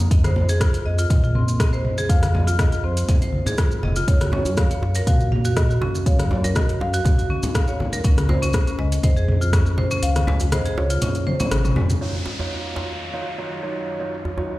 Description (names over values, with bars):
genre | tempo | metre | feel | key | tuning
afro house | 121 BPM | 4/4 | swing 53% on 16ths | Eb dorian | A4 = 442 Hz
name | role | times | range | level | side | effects
dark detuned saw bass | bass | 0.0-12.0 s | F1 to Bb2 | -22 LUFS | equal | tube saturation, sidechain pumping
congas | percussion | 0.0-12.0 s | none | -28 LUFS | left 1 dB | none
marimba with medium hard mallets | arpeggios | 0.1-11.8 s | Ab3 to F5 | -27 LUFS | equal | sidechain pumping, digital delay
deep house drum kit | drums | 0.1-12.0 s | hi-hat, rim click, toms | -26 LUFS | equal | overdrive, low-pass filter on hats, low-pass filter on cymbals, low-pass filter on snare, low-pass filter on toms, low-pass filter on room
electronic kick drum | drums | 0.1-9.6 s | none | -19 LUFS | equal | none
maracas | percussion | 0.1-12.0 s | none | -36 LUFS | right 2 dB | none
marimba with soft mallets | melody | 0.9-11.7 s | C5 to F5 | -32 LUFS | left 1 dB | digital delay
djembe | percussion | 4.3-14.5 s | none | -30 LUFS | right 1 dB | none
dark analog pad | sustained chords | 12.0-14.6 s | Gb3 to F5 | -33 LUFS | left 1 dB | chorus, sidechain pumping
felt-muted upright piano | stabs | 12.0-14.6 s | Eb4 to Db5 | -29 LUFS | right 3 dB | sidechain pumping, low-pass filter, digital delay
downlifter | sound effects | 12.0-14.6 s | none | -32 LUFS | equal | none
room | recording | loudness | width
light reverb, studio reverb | played on a big sound system in a bare room, large studio reverb | -18 LUFS | side -17 dB against mid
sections
0.0-12.0 A section; 12.0-14.6 B section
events
kick drops out 10.0-12.0; drum fill 11.3-12.0; filter sweep on analog synth pad 12.0-14.6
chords
0.1 Fm7; 4.1 Gbmaj7; 8.0 Db; 12.0 Ebm9